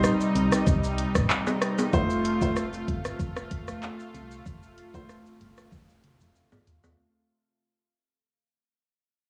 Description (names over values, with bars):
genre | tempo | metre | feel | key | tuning
dancehall | 95 BPM | 4/4 | straight | unclear | A4 = 440 Hz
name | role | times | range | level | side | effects
warm grand piano | accompaniment | 0.0-5.1 s | A3 to C5 | -28 LUFS | equal | sidechain pumping
lush unison pad | sustained chords | 0.0-6.9 s | C3 to F4 | -32 LUFS | equal | chorus, sidechain pumping
solid FM bass | bass | 0.0-6.3 s | F1 to C2 | -35 LUFS | equal | none
afro-pop drum kit | drums | 0.0-7.0 s | handclaps, hi-hat, kick drum, rim click, shaker, toms | -30 LUFS | equal | none
maracas and timbales | percussion | 0.0-7.0 s | none | -36 LUFS | equal | none
room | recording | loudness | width
light reverb | small room reverb | -26 LUFS | mono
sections
0.0-7.0 A section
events
fade-out 0.0-7.0; drum fill 5.7-7.0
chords
0.0 Cm; 1.9 F